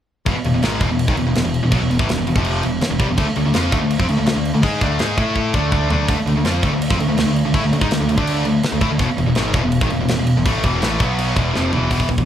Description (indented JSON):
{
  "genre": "heavy metal",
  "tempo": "165 BPM",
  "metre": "4/4",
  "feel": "straight",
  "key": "E phrygian dominant",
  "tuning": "A4 = 440 Hz",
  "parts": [
    { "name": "distorted electric guitar", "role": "riff", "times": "0.3-12.3 s", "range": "E2 to A4", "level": "-21 LUFS", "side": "left 5 dB", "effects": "overdrive" },
    { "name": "tight distorted guitar", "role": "riff", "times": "0.3-12.3 s", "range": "E2 to A4", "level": "-22 LUFS", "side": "right 5 dB", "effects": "distortion" },
    { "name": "growling picked electric bass", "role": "bass", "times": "0.3-12.2 s", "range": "E1 to A2", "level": "-22 LUFS", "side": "equal", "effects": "overdrive" },
    { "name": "tight metal drum kit", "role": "drums", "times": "0.3-12.3 s", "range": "crash cymbal, hi-hat, kick drum, snare drum, toms", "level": "-22 LUFS", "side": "equal", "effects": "none" }
  ],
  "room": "moderate large studio reverb, RT60 1.3 s",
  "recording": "band playing live in one room",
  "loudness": "-16 LUFS",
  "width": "side -10 dB against mid",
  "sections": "0.3-11.9 A section",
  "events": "drum fill 5.4-6.1, 11.5-11.9",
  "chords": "0.3 E; 3.2 D5; 5.2 A5; 5.5 D5; 9.0 E; 11.0 B5; 11.4 E5"
}